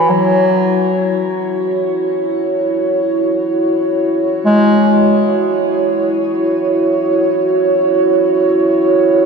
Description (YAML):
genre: dark ambient drone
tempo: free time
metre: none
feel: none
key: unclear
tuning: A4 = 442 Hz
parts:
  - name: warm bass clarinet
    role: melody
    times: 0.0-5.0 s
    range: E3 to G#3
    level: -15 LUFS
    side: left 1 dB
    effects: shimmer reverb, ping-pong delay
  - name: dark analog pad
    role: sustained chords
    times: 0.0-9.3 s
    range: E4 to C#5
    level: -13 LUFS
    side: right 1 dB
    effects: lush chorus, shimmer reverb
room: wet lush hall reverb, RT60 3.3 s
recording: dreamy mix soaked in reverb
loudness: -12 LUFS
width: side -5 dB against mid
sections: 0.0-9.3 A section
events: fade-in on analog synth pad 0.0-9.3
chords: 0.0 F#5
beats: free time